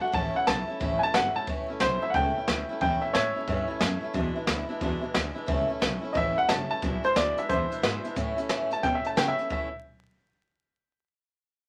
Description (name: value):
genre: rockabilly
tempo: 179 BPM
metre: 4/4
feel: swing 64% on 8ths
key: A major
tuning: A4 = 440 Hz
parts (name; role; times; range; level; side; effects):
- warm upright piano; melody; 0.0-4.1, 6.1-9.7 s; C5 to A5; -30 LUFS; equal; none
- picked swing-style acoustic guitar; accompaniment; 0.0-9.7 s; E2 to F#4; -34 LUFS; equal; none
- upright bass; bass; 0.0-9.7 s; F#1 to C#3; -36 LUFS; equal; none
- jazz brush drum kit; drums; 0.1-9.6 s; hi-hat, kick drum, snare drum; -33 LUFS; equal; none
room: moderate small room ambience, RT60 0.5 s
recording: vinyl crackle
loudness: -27 LUFS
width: mono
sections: 0.0-6.8 A section; 6.8-9.5 B section; 9.5-10.8 C section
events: none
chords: 0.1 A; 4.2 E7; 5.5 A; 6.8 E7; 8.2 A